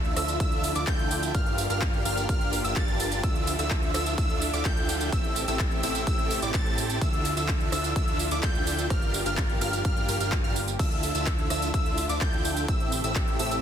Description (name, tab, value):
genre	EDM, festival progressive house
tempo	127 BPM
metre	4/4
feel	straight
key	D minor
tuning	A4 = 439 Hz
part	lush unison pad	sustained chords	0.0-13.6 s	C3 to E5	-35 LUFS	equal	chorus, vintage 12-bit sampler grit, sidechain pumping
part	plucky unison lead	arpeggios	0.0-13.6 s	D6 to A6	-32 LUFS	equal	sidechain pumping, ping-pong delay
part	big supersaw lead	riff	0.0-13.6 s	C4 to A5	-31 LUFS	right 1 dB	sidechain pumping, ping-pong delay
part	fat analog bass	bass	0.0-13.6 s	G1 to D2	-32 LUFS	equal	sidechain pumping
part	big-room dance drum kit	drums	0.0-13.6 s	crash cymbal, handclaps, hi-hat, rim click, tambourine	-33 LUFS	right 2 dB	none
part	electronic kick drum	drums	0.4-13.3 s	none	-27 LUFS	equal	none
room	light reverb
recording	dense, heavily limited modern master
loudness	-24 LUFS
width	side -9 dB against mid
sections	0.0-13.6 A section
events	none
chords	0.0 Dmadd9; 1.3 Gm7; 3.2 Dmadd9; 5.1 Am7; 7.0 Dmadd9; 8.9 Gm7; 10.8 Dmadd9; 12.7 Am7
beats	0.40 0.87 | 1.35 1.82 2.29 2.76 | 3.24 3.71 4.18 4.65 | 5.12 5.60 6.07 6.54 | 7.01 7.49 7.96 8.43 | 8.90 9.38 9.85 10.32 | 10.79 11.27 11.74 12.21 | 12.68 13.16